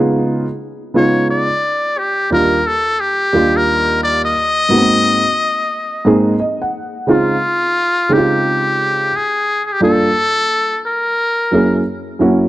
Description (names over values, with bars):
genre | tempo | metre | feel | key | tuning
hip hop | 88 BPM | 4/4 | swing 64% on 16ths | unclear | A4 = 439 Hz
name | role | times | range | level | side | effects
dark upright piano | accompaniment | 0.0-12.5 s | Eb2 to Gb5 | -15 LUFS | right 1 dB | none
trumpet with metal mute | melody | 1.0-11.8 s | F4 to Eb5 | -15 LUFS | left 1 dB | none
room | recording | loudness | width
light reverb | dark, warm production, nothing above 10.4 kHz | -13 LUFS | side -15 dB against mid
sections
0.0-12.5 A section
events
upright piano fill 6.1-7.1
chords
0.3 Db9; 1.6 Ebmaj7; 4.4 Ab9; 7.1 Dbmaj7; 9.8 Gm7; 11.2 Gb9